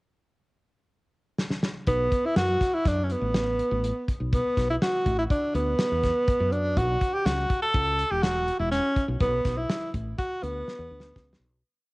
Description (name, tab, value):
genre	progressive instrumental, band music in an uneven meter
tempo	123 BPM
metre	5/4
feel	straight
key	B minor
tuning	A4 = 438 Hz
part	loose indie drum kit	drums	1.4-11.4 s	hi-hat, kick drum, snare drum	-27 LUFS	equal	cassette tape
part	clear tenor saxophone	melody	1.9-11.4 s	B3 to A4	-25 LUFS	equal	cassette tape
part	woody fretless electric bass	bass	1.9-11.6 s	E1 to F#2	-29 LUFS	equal	wide subtle chorus
room	moderate spring reverb, RT60 1.6 s, small room ambience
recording	home recording on cassette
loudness	-23 LUFS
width	side -23 dB against mid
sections	0.0-1.9 pickup bar; 1.9-11.6 A section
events	drum fill 1.4-1.9, 10.7-11.6; fade-out 9.2-11.6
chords	0.0 N.C.; 1.9 B7(no3); 6.8 Esus2; 9.2 Bm7